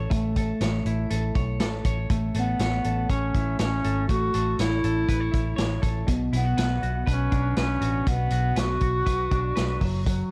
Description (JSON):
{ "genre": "jangly indie pop", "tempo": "121 BPM", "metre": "4/4", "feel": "straight", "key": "A major", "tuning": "A4 = 440 Hz", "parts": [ { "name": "clean electric guitar", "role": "arpeggios", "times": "0.0-10.3 s", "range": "B2 to C#5", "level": "-32 LUFS", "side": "equal", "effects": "lush chorus" }, { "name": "vintage muted fingered electric bass", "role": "bass", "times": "0.0-10.2 s", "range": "F#1 to B1", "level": "-30 LUFS", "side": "equal", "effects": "none" }, { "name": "vintage drum kit", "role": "drums", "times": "0.1-10.2 s", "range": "hi-hat, kick drum, snare drum", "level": "-30 LUFS", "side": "equal", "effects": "none" }, { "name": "bass recorder", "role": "melody", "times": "2.4-9.8 s", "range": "B3 to F#4", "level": "-30 LUFS", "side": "equal", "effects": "tape echo" } ], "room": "light reverb", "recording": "dark, warm production", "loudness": "-25 LUFS", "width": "mono", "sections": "0.0-2.1 A section; 2.1-10.3 B section", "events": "none", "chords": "0.0 A; 6.1 Bm; 9.8 N.C.", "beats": "| 0.11 0.61 1.10 1.60 | 2.10 2.60 3.10 3.60 | 4.09 4.59 5.09 5.58 | 6.08 6.58 7.08 7.57 | 8.07 8.57 9.06 9.56 | 10.06" }